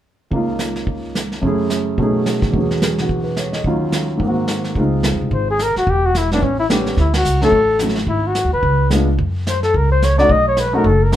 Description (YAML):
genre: jazz, small-group swing and bop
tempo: 216 BPM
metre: 4/4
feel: swing 59% on 8ths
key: unclear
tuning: A4 = 436 Hz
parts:
  - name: warm grand piano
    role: accompaniment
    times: 0.3-11.2 s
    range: Db2 to Eb5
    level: -19 LUFS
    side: right 1 dB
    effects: none
  - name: vintage brush drum kit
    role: drums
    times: 0.3-11.2 s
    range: brushed snare drum, hi-hat, kick drum, ride cymbal, snare drum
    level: -23 LUFS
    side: right 1 dB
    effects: none
  - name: upright bass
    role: bass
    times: 4.8-11.2 s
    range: E1 to Gb2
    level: -18 LUFS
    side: equal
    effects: none
  - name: warm flugelhorn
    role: melody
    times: 5.3-11.2 s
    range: C#4 to Eb5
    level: -16 LUFS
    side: left 2 dB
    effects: none
room: wet club reverb, RT60 0.6 s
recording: heard from further back in the room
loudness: -15 LUFS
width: side -12 dB against mid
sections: 0.3-4.8 A section; 4.8-11.2 B section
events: band accent 7.1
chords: 0.3 Db69; 1.4 Gbm7; 2.0 Cb13; 2.5 E69; 3.6 Ebm7; 4.2 Ab7; 4.8 Dbmaj7; 5.9 Em; 6.4 A9; 7.0 Dmaj7; 8.1 Abm7; 8.6 Db7b9; 9.2 Gb5; 10.3 Cb7sus2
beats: | 0.32 0.60 0.88 1.15 | 1.43 1.71 1.98 2.26 | 2.54 2.81 3.09 3.37 | 3.65 3.92 4.20 4.48 | 4.75 5.03 5.31 5.59 | 5.86 6.14 6.42 6.70 | 6.97 7.25 7.53 7.80 | 8.08 8.36 8.64 8.91 | 9.19 9.47 9.75 10.02 | 10.30 10.58 10.85 11.13